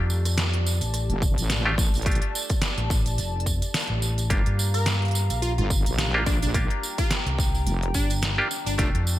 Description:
glitch hop; 107 BPM; 4/4; swing 57% on 16ths; G minor; A4 = 440 Hz
dark analog pad; sustained chords; 0.0-9.2 s; G4 to Bb5; -34 LUFS; equal; chorus, sidechain pumping
bright clav; stabs; 0.0-9.2 s; A3 to G4; -30 LUFS; equal; sidechain pumping, ping-pong delay
overdriven fingered electric bass; bass; 0.0-9.2 s; F1 to G2; -25 LUFS; equal; tube saturation
tambourine; percussion; 0.1-9.2 s; -33 LUFS; right 3 dB
dubstep drum kit; drums; 0.3-9.0 s; hi-hat, rim click, snare drum; -29 LUFS; equal; gated reverb
wobble bass; bass; 1.1-8.9 s; F1 to Bb1; -26 LUFS; equal; chorus
electronic kick drum; drums; 1.2-8.9 s; -25 LUFS; equal
plucky unison lead; melody; 4.7-8.9 s; D4 to Bb4; -32 LUFS; equal; ping-pong delay
little or no reverb; bright 1980s-style digital production; -22 LUFS; side -14 dB against mid
0.0-9.2 A section
0.0 F69; 4.3 Gm7
0.38 0.94 1.50 | 2.06 2.62 3.18 3.74 | 4.30 4.86 5.42 5.99 | 6.55 7.11 7.67 8.23 | 8.79

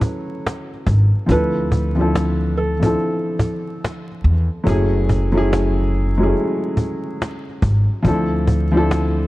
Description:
lo-fi hip hop; 71 BPM; 4/4; swing 64% on 16ths; F# minor; A4 = 435 Hz
felt-muted upright piano; melody; 0.0-4.1 s; A4 to C#5; -26 LUFS; right 2 dB; analog delay
dark upright piano; accompaniment; 0.0-9.3 s; F3 to B4; -20 LUFS; equal
cajon; drums; 0.0-9.2 s; -21 LUFS; equal; vintage 12-bit sampler grit
upright bass; bass; 0.9-9.3 s; F#1 to E2; -18 LUFS; equal
little or no reverb; dark, warm production, vinyl crackle; -16 LUFS; side -18 dB against mid
0.0-9.3 A section
0.0 F#m7; 1.3 Dm7; 4.7 F#m7; 8.0 Dm7
0.44 | 1.29 2.13 2.98 3.82 | 4.67 5.51 6.36 7.20 | 8.05 8.89

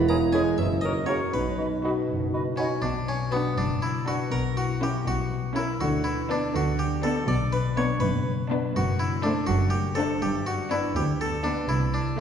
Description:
cinematic, playful, whimsical film cue; 81 BPM (dotted quarters); 6/8; straight; B minor, G major from 8.8 s; A4 = 443 Hz
harpsichord; melody; 0.0-12.2 s; B3 to A#5; -30 LUFS; left 1 dB
mellow bassoon; accompaniment; 0.0-2.6 s; B2 to B3; -32 LUFS; right 2 dB
mellow French horn section; sustained chords; 0.0-2.4 s; C#4 to E4; -28 LUFS; right 4 dB
concert harp; arpeggios; 0.0-12.2 s; E2 to D#5; -30 LUFS; left 4 dB
mellow tuba; bass; 0.0-2.7 s; E1 to B1; -32 LUFS; right 1 dB
rich studio double bass section; bass; 0.0-12.2 s; E1 to D2; -32 LUFS; right 1 dB
warm studio cello section; bass; 0.0-12.2 s; D2 to D3; -31 LUFS; right 1 dB
bright clarinet; second line; 0.1-2.7 s; E4 to F#4; -36 LUFS; equal
bright large flute ensemble; second line; 0.1-2.7 s; C#5 to D#5; -37 LUFS; right 1 dB
mellow cor anglais; second line; 0.1-2.7 s; G#4 to B4; -38 LUFS; right 2 dB
warm studio violin section; melody; 0.3-11.6 s; A#4 to C#5; -41 LUFS; left 4 dB
warm studio violin section; second line; 0.3-11.6 s; D4 to G#4; -35 LUFS; left 2 dB
rich studio viola section; accompaniment; 0.3-11.6 s; A3 to D#4; -34 LUFS; right 1 dB
wet scoring stage reverb, RT60 1.8 s; heard from further back in the room, nothing above 10.7 kHz; -23 LUFS; side -8 dB against mid
0.0-2.8 A section; 2.8-12.2 B section
0.0 C#m/E; 0.6 F#; 1.3 B; 2.8 Bm; 4.3 F#7/B; 5.8 Bm/D; 7.3 Bm; 8.8 D7/F#; 10.2 G; 11.7 Am/C (rootless)
0.58 | 1.33 2.08 | 2.84 3.58 | 4.33 5.07 | 5.80 6.54 | 7.28 8.02 | 8.75 9.49 | 10.22 10.95 | 11.69

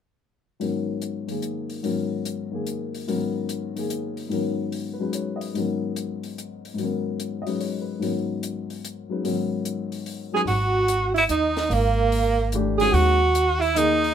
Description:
modal jazz; 146 BPM; 3/4; swing 66% on 8ths; G# minor; A4 = 439 Hz
warm baby grand piano; accompaniment; 0.6-10.5, 12.5-14.1 s; G#2 to D#5; -26 LUFS; left 4 dB
compact cocktail drum kit; drums; 0.6-14.1 s; hi-hat, snare drum; -37 LUFS; left 4 dB
warm alto saxophone; second line; 10.3-14.1 s; A#3 to G#4; -24 LUFS; right 5 dB
bright tenor saxophone; melody; 10.4-14.1 s; A#3 to G#4; -22 LUFS; right 2 dB
upright bass; bass; 10.5-14.1 s; G#1 to D#2; -24 LUFS; equal
moderate studio reverb, RT60 0.5 s; minimal, uncompressed stereo recording; -22 LUFS; side -8 dB against mid
0.6-10.5 A section; 10.5-14.1 B section
0.6 G#m11; 10.5 G#7sus2
| 0.61 1.02 1.43 | 1.84 2.26 2.67 | 3.08 3.49 3.90 | 4.32 4.73 5.14 | 5.55 5.96 6.37 | 6.78 7.20 7.61 | 8.02 8.43 8.84 | 9.25 9.66 10.07 | 10.48 10.89 11.31 | 11.72 12.13 12.54 | 12.95 13.36 13.77

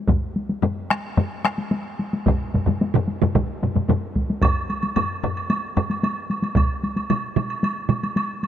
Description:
japanese traditional, taiko drum ensemble; 112 BPM; 4/4; straight
solo taiko drums; percussion; 0.1-8.5 s; -25 LUFS; left 1 dB
solo taiko drums; percussion; 0.1-6.7 s; -23 LUFS; right 1 dB
taiko ensemble; percussion; 0.1-5.9 s; -24 LUFS; left 3 dB
taiko ensemble; percussion; 2.3-8.0 s; -25 LUFS; right 5 dB
woodblock; percussion; 4.4-8.5 s; -27 LUFS; right 3 dB
light reverb; -20 LUFS; side -10 dB against mid
0.0-8.5 A section
speeding up 0.0-8.5
| 0.08 0.63 1.18 1.72 | 2.26 2.81 3.35 3.89 | 4.42 4.96 5.50 6.03 | 6.56 7.10 7.63 8.16

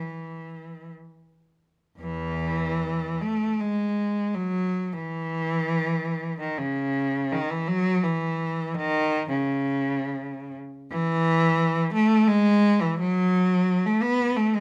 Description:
classical, free, expressive piece for unaccompanied cello; 45-89 BPM; 3/4; rubato; E major; A4 = 438 Hz
rich cello; solo; 0.0-14.6 s; E2 to B3; -25 LUFS; equal
light reverb; -25 LUFS; mono
0.0-2.0 A section; 2.0-14.6 B section
0.91 | 2.00 2.83 3.61 | 4.36 5.12 5.86 | 6.58 7.33 8.04 | 8.76 9.48 10.22 | 10.91 11.60 12.29 | 13.00 13.69 14.38

